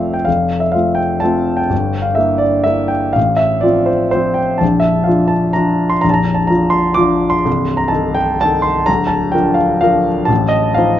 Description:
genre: classical, piano waltz.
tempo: 126 BPM.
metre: 3/4.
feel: uneven beats, rubato.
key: F major.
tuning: A4 = 437 Hz.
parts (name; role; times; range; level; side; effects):
clear grand piano; solo; 0.0-11.0 s; Bb0 to D6; -12 LUFS; equal; none.
room: moderate studio reverb, RT60 0.8 s.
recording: nothing above 7.6 kHz.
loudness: -12 LUFS.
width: side -11 dB against mid.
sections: 0.0-11.0 A section.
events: none.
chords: 0.0 F; 1.7 Edim/G; 3.2 F/A; 4.6 Bb; 7.5 Adim/C; 8.9 Bb/D; 10.3 F7/A.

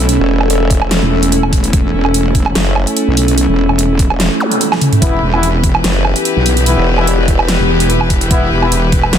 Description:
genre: heavy wobble dubstep.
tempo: 146 BPM.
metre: 4/4.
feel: swing 54% on 16ths, half-time.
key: unclear.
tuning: A4 = 440 Hz.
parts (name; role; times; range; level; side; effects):
warm studio string section; sustained chords; 0.0-9.2 s; E3 to B4; -19 LUFS; left 1 dB; sidechain pumping.
wobble bass; bass; 0.0-9.1 s; E1 to B1; -14 LUFS; equal; chorus, overdrive.
warbly tape-like pad; texture; 0.0-9.2 s; B3 to A4; -18 LUFS; equal; chorus, built-in reverb, sidechain pumping.
dubstep drum kit; drums; 0.1-9.2 s; hi-hat, snare drum, toms, woodblock; -16 LUFS; right 2 dB; overdrive.
formant-sweep wobble bass; bass; 0.2-9.2 s; E1 to F#1; -15 LUFS; equal; chorus, overdrive.
electronic kick drum; drums; 0.7-9.0 s; none; -13 LUFS; equal; overdrive.
zap; sound effects; 4.4-4.5 s; none; -19 LUFS; equal; none.
mellow brass ensemble; stabs; 5.0-8.7 s; E3 to E4; -20 LUFS; left 2 dB; tape echo.
room: light reverb, digital ambience.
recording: dense, heavily limited modern master.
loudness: -10 LUFS.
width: side -9 dB against mid.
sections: 0.0-9.2 A section.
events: drum fill 4.7-5.0.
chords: 0.0 A/E.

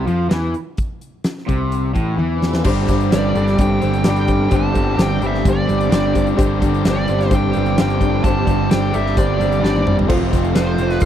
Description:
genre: classic rock.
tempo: 129 BPM.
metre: 4/4.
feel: straight.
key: unclear.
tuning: A4 = 440 Hz.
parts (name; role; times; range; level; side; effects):
crunchy overdriven guitar; riff; 0.0-11.1 s; F2 to G4; -22 LUFS; left 9 dB; none.
raw garage guitar; riff; 0.0-11.1 s; F2 to G3; -22 LUFS; right 13 dB; overdrive.
growling picked electric bass; bass; 0.0-11.1 s; F1 to F2; -20 LUFS; equal; overdrive.
huge arena drum kit; drums; 0.1-11.1 s; crash cymbal, hi-hat, kick drum, snare drum, toms; -20 LUFS; equal; none.
tonewheel organ; sustained chords; 2.3-11.1 s; C4 to F5; -31 LUFS; equal; none.
honky-tonk upright piano; accompaniment; 2.6-11.1 s; D4 to D5; -24 LUFS; left 4 dB; none.
fuzz lead guitar; melody; 3.1-11.1 s; C5 to A5; -24 LUFS; right 4 dB; wah, distortion.
room: studio reverb.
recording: dry, close 1970s-style studio recording.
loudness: -15 LUFS.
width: side -10 dB against mid.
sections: 0.0-2.7 A section; 2.7-11.1 B section.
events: drum fill 2.2-2.7, 9.6-10.1.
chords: 0.0 Am; 2.7 Gsus4; 10.1 F.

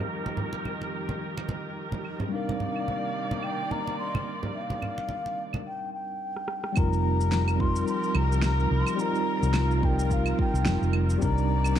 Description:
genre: sunset chillout.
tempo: 108 BPM.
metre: 4/4.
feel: swing 58% on 16ths.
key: unclear.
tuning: A4 = 439 Hz.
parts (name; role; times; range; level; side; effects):
tine electric piano; accompaniment; 0.0-11.8 s; G3 to Bb4; -31 LUFS; right 1 dB; medium tremolo, auto-pan, low-pass filter, ping-pong delay.
rich studio string section; sustained chords; 0.0-11.8 s; F2 to D5; -34 LUFS; right 1 dB; low-pass filter.
congas; percussion; 0.3-5.6 s; none; -34 LUFS; right 2 dB; none.
electronic claves, rim click, shaker and snare drum; drums; 0.7-11.8 s; none; -33 LUFS; right 1 dB; low-pass filter on perc, low-pass filter on snare.
mellow baroque flute; melody; 2.3-11.8 s; F5 to C6; -32 LUFS; left 3 dB; vintage 12-bit sampler grit, ping-pong delay.
hollow-body short-scale fingered electric bass; bass; 6.8-11.8 s; F1 to C2; -25 LUFS; equal; none.
electronic kick drum; drums; 6.8-11.3 s; none; -27 LUFS; equal; none.
room: light reverb.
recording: dark, warm production.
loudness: -25 LUFS.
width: side -10 dB against mid.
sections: 0.0-6.8 A section; 6.8-11.8 B section.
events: filter sweep on tine electric piano 0.0-6.8; drum fill 6.4-6.8.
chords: 0.0 F9sus4; 2.3 Cm9; 6.8 F9sus4; 11.2 Cm9.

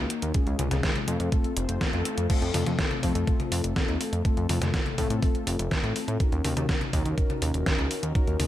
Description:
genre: italo disco.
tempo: 123 BPM.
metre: 4/4.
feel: straight.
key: unclear.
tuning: A4 = 440 Hz.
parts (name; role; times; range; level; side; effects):
mellow synth brass; stabs; 0.0-8.5 s; Ab3 to C5; -31 LUFS; left 4 dB; chorus, tape echo.
fat analog bass; bass; 0.0-8.5 s; Eb1 to A2; -29 LUFS; right 1 dB; none.
detuned 8-bit digital drum machine; drums; 0.1-8.5 s; crash cymbal, hi-hat, snare drum, toms; -30 LUFS; left 1 dB; gated reverb.
electronic kick drum; drums; 0.3-8.2 s; none; -27 LUFS; right 1 dB; none.
room: digital ambience.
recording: none.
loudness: -24 LUFS.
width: side -13 dB against mid.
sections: 0.0-2.3 A section; 2.3-8.5 B section.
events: band accent 1.8.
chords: 0.3 Db; 1.3 F; 6.2 Ebm7.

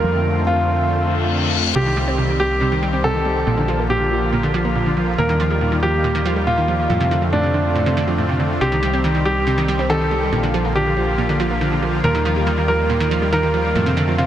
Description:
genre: trance.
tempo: 140 BPM.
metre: 4/4.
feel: straight.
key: C dorian.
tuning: A4 = 440 Hz.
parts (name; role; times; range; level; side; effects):
warm concert grand piano; second line; 0.0-14.3 s; D4 to Bb4; -21 LUFS; equal; vintage 12-bit sampler grit, tape echo.
supersaw pad; sustained chords; 0.0-14.3 s; D3 to G4; -22 LUFS; equal; none.
solid FM bass; bass; 0.0-14.3 s; Bb1 to F2; -22 LUFS; left 1 dB; none.
reverse cymbal and riser; sound effects; 1.1-1.8, 12.0-14.3 s; none; -28 LUFS; left 7 dB; none.
analog pluck; arpeggios; 1.8-14.2 s; A2 to C4; -22 LUFS; right 2 dB; chorus, tape echo.
room: moderate huge ambient reverb, RT60 7.1 s.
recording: dense, heavily limited modern master.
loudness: -16 LUFS.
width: side -11 dB against mid.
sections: 0.0-14.3 A section.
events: filter sweep on supersaw synth 0.0-14.3; reverse cymbal 1.1-1.8.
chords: 0.0 F6; 1.8 Cm; 3.5 Bb; 5.2 Ebadd9; 6.9 F6; 8.6 Cm; 10.3 Bb; 12.0 Ebadd9; 13.8 F6.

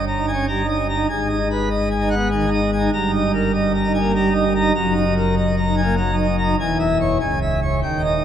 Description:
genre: classical, organ toccata.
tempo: 98 BPM.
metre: 3/4.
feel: straight.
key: unclear.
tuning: A4 = 435 Hz.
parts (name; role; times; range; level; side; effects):
pipe organ, plenum; solo; 0.0-8.2 s; C#1 to A#5; -17 LUFS; equal; none.
room: wet cathedral reverb, RT60 4.5 s.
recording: none.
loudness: -17 LUFS.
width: side -9 dB against mid.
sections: 0.0-8.2 A section.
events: none.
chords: 0.0 D#7/G; 1.1 G#m; 2.9 D#/G; 4.8 D#m/F#; 6.6 C#m/E; 7.2 C#m.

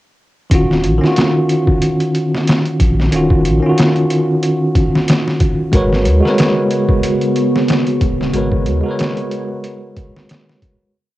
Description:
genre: trip hop.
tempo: 92 BPM.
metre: 4/4.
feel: swing 55% on 16ths.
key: Eb minor.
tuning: A4 = 436 Hz.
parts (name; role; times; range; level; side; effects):
bell-like tine electric piano; accompaniment; 0.5-11.0 s; Eb3 to Db5; -15 LUFS; equal; fast stereo tremolo, harmonic tremolo, tape echo.
warm sub bass; bass; 0.5-8.8 s; Eb1 to Eb2; -17 LUFS; equal; none.
trip hop sampler-style drum kit; drums; 0.5-10.8 s; hi-hat, kick drum, snare drum; -16 LUFS; equal; overdrive, cassette tape.
warbly tape-like pad; sustained chords; 6.3-10.9 s; Db3 to Gb4; -20 LUFS; right 1 dB; chorus, built-in reverb.
room: digital ambience.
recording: home recording on cassette.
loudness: -12 LUFS.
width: side -16 dB against mid.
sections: 0.5-10.9 groove.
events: fade-out 7.5-10.9.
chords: 0.5 Ebm9; 5.7 Abm11.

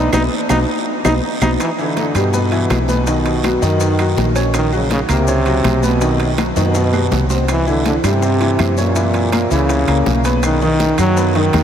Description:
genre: latin, salsa.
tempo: 163 BPM.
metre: 4/4.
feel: straight.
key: unclear.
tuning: A4 = 441 Hz.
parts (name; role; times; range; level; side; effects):
bright trombone; melody; 0.0-11.6 s; A#2 to D#4; -18 LUFS; equal; diffuse ambient delay.
bright upright piano; accompaniment; 0.0-11.6 s; D#3 to C#5; -20 LUFS; equal; none.
vintage muted fingered electric bass; bass; 0.0-11.6 s; A#1 to G2; -18 LUFS; equal; none.
bongos; percussion; 0.1-11.6 s; none; -28 LUFS; left 5 dB; none.
claves; percussion; 0.1-11.6 s; none; -33 LUFS; right 6 dB; none.
congas; percussion; 0.1-11.6 s; none; -26 LUFS; left 2 dB; none.
guiro; percussion; 0.1-11.6 s; none; -32 LUFS; right 8 dB; none.
maracas; percussion; 0.1-11.6 s; none; -33 LUFS; left 8 dB; none.
timbales; percussion; 0.1-11.6 s; none; -28 LUFS; right 5 dB; none.
room: wet huge ambient reverb, RT60 8.1 s.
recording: dreamy mix soaked in reverb.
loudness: -13 LUFS.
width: side -9 dB against mid.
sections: 0.0-1.6 A section; 1.6-11.6 A section.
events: band accent 0.1-1.6; drum fill 0.7-1.6, 6.6-7.5.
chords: 0.1 B; 1.6 Em; 3.1 B; 4.5 F#/A#; 6.0 B; 7.5 C; 9.0 F#7; 10.4 B.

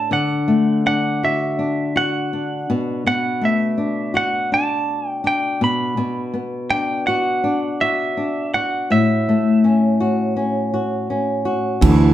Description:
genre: acoustic pop.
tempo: 82 BPM.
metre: 4/4.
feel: swing 55% on 16ths.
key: unclear.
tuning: A4 = 440 Hz.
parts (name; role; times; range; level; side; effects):
direct-recorded clean electric guitar; melody; 0.0-11.1 s; E5 to B5; -21 LUFS; right 2 dB; none.
flamenco guitar; accompaniment; 0.0-12.1 s; A2 to A4; -19 LUFS; left 2 dB; none.
fingerpicked plugged-in steel-string acoustic guitar; arpeggios; 11.8-12.1 s; E3; -16 LUFS; right 6 dB; none.
fretless electric bass; bass; 11.8-12.1 s; D2; -14 LUFS; right 1 dB; none.
modern studio drum kit; drums; 11.8-12.0 s; crash cymbal, kick drum; -18 LUFS; right 1 dB; none.
room: wet studio reverb, RT60 0.7 s.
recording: heard from further back in the room.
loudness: -17 LUFS.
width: side -12 dB against mid.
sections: 0.0-11.8 A section.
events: none.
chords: 0.1 Dadd9; 2.7 Bm7; 8.9 A6.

